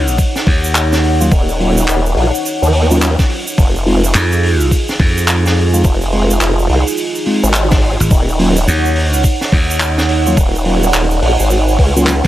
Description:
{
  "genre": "glitch hop",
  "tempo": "106 BPM",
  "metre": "4/4",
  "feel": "swing 62% on 16ths",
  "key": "Eb minor",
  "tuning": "A4 = 441 Hz",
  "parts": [
    { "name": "dark analog pad", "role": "sustained chords", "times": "0.0-12.3 s", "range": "Eb4 to Gb5", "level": "-19 LUFS", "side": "right 2 dB", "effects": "chorus, sidechain pumping" },
    { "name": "glassy slap bass", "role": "bass", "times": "0.0-12.3 s", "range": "Ab1 to F2", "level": "-13 LUFS", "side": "equal", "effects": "tube saturation" },
    { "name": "crunchy breakbeat drum kit", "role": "drums", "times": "0.1-12.3 s", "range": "handclaps, hi-hat, snare drum", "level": "-19 LUFS", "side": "equal", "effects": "none" },
    { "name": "egg shaker", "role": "percussion", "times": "0.1-12.3 s", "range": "none", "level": "-25 LUFS", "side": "right 5 dB", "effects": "none" },
    { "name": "electronic kick drum", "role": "drums", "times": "0.2-12.3 s", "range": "none", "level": "-12 LUFS", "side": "equal", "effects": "overdrive" },
    { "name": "mellow tine electric piano", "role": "stabs", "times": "1.2-12.1 s", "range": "Gb3 to F4", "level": "-17 LUFS", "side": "equal", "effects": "phaser, sidechain pumping, digital delay" },
    { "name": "formant-sweep wobble bass", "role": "bass", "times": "1.3-12.2 s", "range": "Eb1 to Eb2", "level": "-14 LUFS", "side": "equal", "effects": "chorus" }
  ],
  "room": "little or no reverb",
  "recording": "none",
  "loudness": "-11 LUFS",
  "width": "side -14 dB against mid",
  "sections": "0.0-12.3 A section",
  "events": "none",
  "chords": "0.0 Ebm7; 3.6 Fm7; 8.1 Ebm7",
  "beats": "0.18 0.75 | 1.32 1.88 2.45 3.01 | 3.58 4.15 4.71 5.28 | 5.84 6.41 6.98 7.54 | 8.11 8.67 9.24 9.81 | 10.37 10.94 11.51 12.07"
}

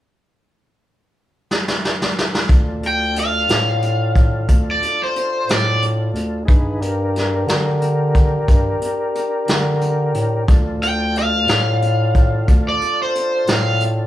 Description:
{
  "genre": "slow blues",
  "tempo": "60 BPM (dotted quarters)",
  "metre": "12/8",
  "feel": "straight",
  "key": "D minor",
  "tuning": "A4 = 440 Hz",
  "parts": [
    { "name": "vintage brush drum kit", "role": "drums", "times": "1.5-14.0 s", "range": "hi-hat, kick drum, snare drum", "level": "-17 LUFS", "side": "equal", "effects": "none" },
    { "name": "tonewheel organ", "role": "sustained chords", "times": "2.5-14.1 s", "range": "D4 to B4", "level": "-24 LUFS", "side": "left 2 dB", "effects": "chorus vibrato" },
    { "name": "breathy bass clarinet", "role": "bass", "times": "2.5-14.1 s", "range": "D2 to D3", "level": "-20 LUFS", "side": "equal", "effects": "none" },
    { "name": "raw garage guitar", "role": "melody", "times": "2.9-13.8 s", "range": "C5 to G5", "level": "-19 LUFS", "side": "equal", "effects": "overdrive" }
  ],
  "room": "light reverb",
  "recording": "band playing live in one room",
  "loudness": "-15 LUFS",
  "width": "side -13 dB against mid",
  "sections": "0.0-2.5 A section; 2.5-14.1 B section",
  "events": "drum fill 1.5-2.5",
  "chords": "0.0 N.C.; 2.5 Dm; 6.5 Gm; 10.5 Dm",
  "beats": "0.48 1.48 | 2.48 3.48 4.48 5.48 | 6.48 7.48 8.48 9.48 | 10.48 11.48 12.48 13.48"
}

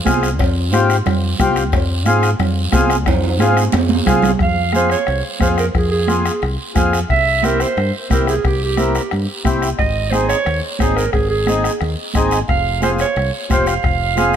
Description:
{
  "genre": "latin, cumbia",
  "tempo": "178 BPM",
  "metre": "4/4",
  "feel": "straight",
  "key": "F minor",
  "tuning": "A4 = 441 Hz",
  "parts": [
    { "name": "mellow accordion", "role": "accompaniment", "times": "0.1-14.4 s", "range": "C4 to Bb4", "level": "-20 LUFS", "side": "left 1 dB", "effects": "none" },
    { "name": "fingered electric bass", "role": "bass", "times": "0.1-14.4 s", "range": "F1 to Ab2", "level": "-20 LUFS", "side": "equal", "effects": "none" },
    { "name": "bombo", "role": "percussion", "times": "0.1-14.3 s", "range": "none", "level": "-21 LUFS", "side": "left 3 dB", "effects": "none" },
    { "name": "congas", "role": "percussion", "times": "0.1-14.3 s", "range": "none", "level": "-23 LUFS", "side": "right 5 dB", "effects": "none" },
    { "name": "guiro", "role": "percussion", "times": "0.1-14.4 s", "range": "none", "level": "-29 LUFS", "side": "right 4 dB", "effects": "none" },
    { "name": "timbales and cowbell", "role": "percussion", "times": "0.1-4.3 s", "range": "none", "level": "-24 LUFS", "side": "right 6 dB", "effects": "none" },
    { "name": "warm clarinet", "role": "second line", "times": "4.4-14.4 s", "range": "G4 to F5", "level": "-19 LUFS", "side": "right 5 dB", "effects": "none" }
  ],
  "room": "light reverb",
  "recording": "none",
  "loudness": "-14 LUFS",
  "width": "side -9 dB against mid",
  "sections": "0.0-4.4 A section; 4.4-14.4 B section",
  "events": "drum fill 3.1-4.4; clarinet solo 4.4-14.4",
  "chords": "0.0 Fm; 7.1 C7; 9.8 Ab; 12.5 Fm",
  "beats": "0.06 | 0.39 0.73 1.06 1.40 | 1.73 2.06 2.40 2.73 | 3.07 3.40 3.74 4.07 | 4.41 4.74 5.08 5.42 | 5.75 6.09 6.42 6.76 | 7.10 7.43 7.77 8.11 | 8.44 8.78 9.12 9.45 | 9.79 10.13 10.46 10.80 | 11.14 11.47 11.81 12.15 | 12.49 12.82 13.16 13.50 | 13.84 14.17"
}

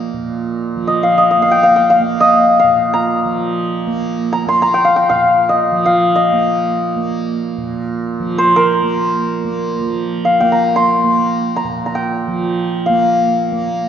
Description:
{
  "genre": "indian classical, Hindustani",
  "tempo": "free time",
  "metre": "none",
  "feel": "none",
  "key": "Bb raga durga",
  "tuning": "A4 = 439 Hz",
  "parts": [
    { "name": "santur", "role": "melody", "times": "0.0-13.9 s", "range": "Bb4 to C6", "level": "-13 LUFS", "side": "left 2 dB", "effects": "none" },
    { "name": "tanpura", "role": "drone", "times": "0.0-13.9 s", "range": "Bb2 to Bb3", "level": "-19 LUFS", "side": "right 5 dB", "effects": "none" }
  ],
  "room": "wet scoring stage reverb, RT60 1.6 s",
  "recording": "heard from further back in the room, nothing above 7.7 kHz",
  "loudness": "-12 LUFS",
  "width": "side -9 dB against mid",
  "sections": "0.0-9.8 A section; 9.8-13.9 A section",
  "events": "none",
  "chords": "none",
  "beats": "free time"
}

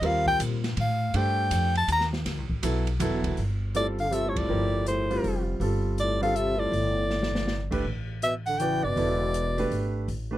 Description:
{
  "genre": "modal jazz",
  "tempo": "161 BPM",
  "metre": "3/4",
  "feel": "swing 65% on 8ths",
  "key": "unclear",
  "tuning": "A4 = 440 Hz",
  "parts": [
    { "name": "breathy soprano saxophone", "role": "melody", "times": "0.0-10.0 s", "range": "C5 to Bb5", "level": "-27 LUFS", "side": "left 1 dB", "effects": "none" },
    { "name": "warm baby grand piano", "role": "accompaniment", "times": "0.0-10.4 s", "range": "C#3 to D5", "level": "-30 LUFS", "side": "right 2 dB", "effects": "none" },
    { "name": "upright bass", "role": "bass", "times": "0.0-10.4 s", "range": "E1 to Bb2", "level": "-29 LUFS", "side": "equal", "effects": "none" },
    { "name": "open jazz drum kit", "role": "drums", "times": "0.0-10.2 s", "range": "crash cymbal, hi-hat, kick drum, ride cymbal, snare drum", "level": "-35 LUFS", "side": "equal", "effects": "none" },
    { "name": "breathy trombone", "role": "second line", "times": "3.7-10.0 s", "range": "A2 to E3", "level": "-32 LUFS", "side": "left 3 dB", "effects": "none" }
  ],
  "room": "little or no reverb",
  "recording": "close, detailed microphones",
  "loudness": "-24 LUFS",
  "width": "side -14 dB against mid",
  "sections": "0.0-3.4 A section; 3.4-10.4 B section",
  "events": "soprano saxophone solo 0.0-3.4; band accent 4.3; drum fill 7.1-7.5",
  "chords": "0.0 Cm11; 2.3 D69 (rootless); 3.4 G13sus4; 7.8 A13sus4",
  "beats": "| 0.02 0.40 0.77 | 1.14 1.51 1.88 | 2.25 2.63 3.00 | 3.37 3.74 4.12 | 4.49 4.86 5.24 | 5.61 5.98 6.35 | 6.73 7.10 7.47 | 7.85 8.22 8.59 | 8.96 9.34 9.71 | 10.09"
}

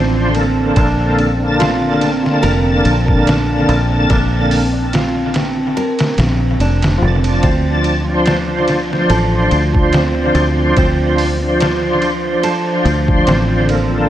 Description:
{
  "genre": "trip hop",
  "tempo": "72 BPM",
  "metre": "4/4",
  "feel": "swing 55% on 16ths",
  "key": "D minor",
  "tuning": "A4 = 440 Hz",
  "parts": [
    { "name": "tonewheel organ", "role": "accompaniment", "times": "0.0-14.1 s", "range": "D3 to A5", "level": "-16 LUFS", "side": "equal", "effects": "overdrive, chorus vibrato, slow rotary speaker, tremolo, tape echo" },
    { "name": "warbly tape-like pad", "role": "sustained chords", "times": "0.0-14.1 s", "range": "F3 to A5", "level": "-21 LUFS", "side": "right 1 dB", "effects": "chorus, built-in reverb, vintage 12-bit sampler grit" },
    { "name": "nylon-string guitar", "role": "arpeggios", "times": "0.0-14.1 s", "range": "C4 to Bb4", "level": "-23 LUFS", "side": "right 2 dB", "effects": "analog delay" },
    { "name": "fingered electric bass", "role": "bass", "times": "0.0-14.1 s", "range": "F1 to D2", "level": "-17 LUFS", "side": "equal", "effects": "tube saturation" },
    { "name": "trip hop sampler-style drum kit", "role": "drums", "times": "0.3-13.9 s", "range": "hi-hat, kick drum, ride cymbal, snare drum", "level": "-20 LUFS", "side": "equal", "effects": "analog delay" }
  ],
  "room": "light reverb, digital ambience",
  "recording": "echo-heavy mix",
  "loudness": "-12 LUFS",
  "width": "side -12 dB against mid",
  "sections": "0.0-14.1 A section",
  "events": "none",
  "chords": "0.0 Dm7; 0.8 Bbmaj7; 7.4 Dm7",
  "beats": "| 0.77 1.60 2.44 3.27 | 4.10 4.94 5.77 6.60 | 7.44 8.27 9.10 9.94 | 10.77 11.60 12.44 13.27"
}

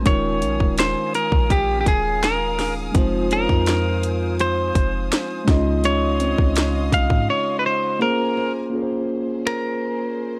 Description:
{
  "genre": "contemporary R&B",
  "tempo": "83 BPM",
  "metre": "4/4",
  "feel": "straight",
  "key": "Bb minor",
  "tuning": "A4 = 445 Hz",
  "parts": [
    { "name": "clean electric guitar", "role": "melody", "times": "0.0-10.4 s", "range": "G4 to F5", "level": "-25 LUFS", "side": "equal", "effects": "none" },
    { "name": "mellow tine electric piano", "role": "accompaniment", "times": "0.0-10.4 s", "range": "Ab3 to Eb5", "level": "-27 LUFS", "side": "equal", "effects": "none" },
    { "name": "warm studio string section", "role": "sustained chords", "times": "0.0-10.4 s", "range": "Bb3 to Eb6", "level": "-38 LUFS", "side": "equal", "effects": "none" },
    { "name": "nylon-string guitar", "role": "arpeggios", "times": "0.0-9.3 s", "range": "Db3 to C5", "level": "-32 LUFS", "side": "equal", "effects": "none" },
    { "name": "clean 808-style bass", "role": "bass", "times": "0.0-7.3 s", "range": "Eb1 to Ab2", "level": "-26 LUFS", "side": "equal", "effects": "none" },
    { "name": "trap drum kit", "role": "drums", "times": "0.1-9.6 s", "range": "finger snaps, hi-hat, kick drum, snare drum", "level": "-23 LUFS", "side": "equal", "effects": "none" }
  ],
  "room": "little or no reverb",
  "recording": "dry, gritty hardware recording",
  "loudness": "-20 LUFS",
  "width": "mono",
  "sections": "0.0-8.7 A section; 8.7-10.4 B section",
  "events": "break 7.3-8.7",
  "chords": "0.1 Eb9sus4; 2.9 Fm7; 5.5 Dbmaj9; 8.0 Bbm9",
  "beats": "| 0.06 0.78 1.50 2.22 | 2.95 3.67 4.39 5.12 | 5.84 6.56 7.28 8.01 | 8.73 9.45 10.18"
}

